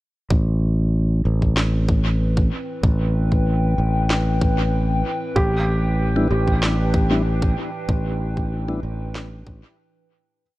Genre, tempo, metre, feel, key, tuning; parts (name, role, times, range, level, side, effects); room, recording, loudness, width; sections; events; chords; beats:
ambient dub; 95 BPM; 4/4; swing 53% on 16ths; A minor; A4 = 440 Hz
warbly tape-like pad; sustained chords; 1.4-10.4 s; A2 to G5; -29 LUFS; left 1 dB; chorus, built-in reverb, phaser
fingered electric bass; bass; 0.3-9.6 s; A1; -20 LUFS; equal
electronic kick drum; drums; 0.3-9.6 s; -20 LUFS; equal; studio reverb
electronic snare drum; drums; 1.6-9.3 s; -27 LUFS; equal; studio reverb, dub echo
felt-muted upright piano; arpeggios; 5.4-10.4 s; G4; -26 LUFS; right 1 dB; tape echo
mellow tonewheel organ; stabs; 6.2-8.8 s; G3 to E4; -25 LUFS; left 1 dB; slow rotary speaker, dub echo
digital ambience; echo-heavy mix; -18 LUFS; side -18 dB against mid
0.3-10.4 groove
fade-in on ambient pad 0.3-10.4; fade-out 7.0-10.4
0.3 Am7; 5.4 Em7/A
| 0.30 0.94 1.57 2.20 | 2.83 3.46 4.09 4.73 | 5.36 5.99 6.62 7.25 | 7.88 8.52 9.15 9.78